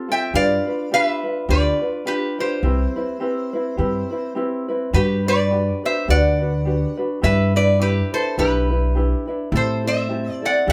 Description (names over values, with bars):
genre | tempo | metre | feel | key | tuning
Hawaiian | 104 BPM | 4/4 | swing 57% on 8ths | C major, G major from 4.9 s | A4 = 440 Hz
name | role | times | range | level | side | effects
lap resonator guitar | melody | 0.0-10.7 s | G4 to A5 | -24 LUFS | equal | none
ukulele | accompaniment | 0.0-10.7 s | C4 to B4 | -26 LUFS | equal | none
upright bass | bass | 0.3-10.7 s | B1 to A2 | -22 LUFS | equal | none
room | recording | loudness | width
wet studio reverb, RT60 0.6 s | band playing live in one room | -20 LUFS | mono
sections
0.0-4.9 A section; 4.9-10.7 B section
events
none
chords
0.3 G7; 2.6 Cmaj7; 4.9 Gmaj7; 7.2 Em7/G; 9.5 Am7